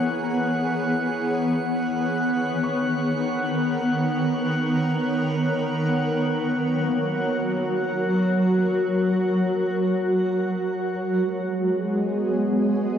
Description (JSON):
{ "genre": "ambient", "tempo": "free time", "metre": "none", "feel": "none", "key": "unclear", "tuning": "A4 = 440 Hz", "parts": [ { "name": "granular cloud pad", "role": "sustained chords", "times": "0.0-13.0 s", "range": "Eb3 to Eb5", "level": "-22 LUFS", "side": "equal", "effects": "built-in reverb" }, { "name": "felt-muted upright piano", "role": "arpeggios", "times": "0.0-13.0 s", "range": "Bb3 to Db6", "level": "-41 LUFS", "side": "equal", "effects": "none" }, { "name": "drifting glass-harmonics texture", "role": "texture", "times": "0.0-10.9 s", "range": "Gb5 to Gb6", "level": "-31 LUFS", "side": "left 1 dB", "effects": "chorus, built-in reverb" } ], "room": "wet huge ambient reverb, RT60 8.7 s", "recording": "dark, warm production", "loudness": "-21 LUFS", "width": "side -8 dB against mid", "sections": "0.0-10.9 A section; 10.9-13.0 B section", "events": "none", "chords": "0.0 E6; 1.8 Cbmaj7/Eb; 6.4 Gb; 10.9 Abm" }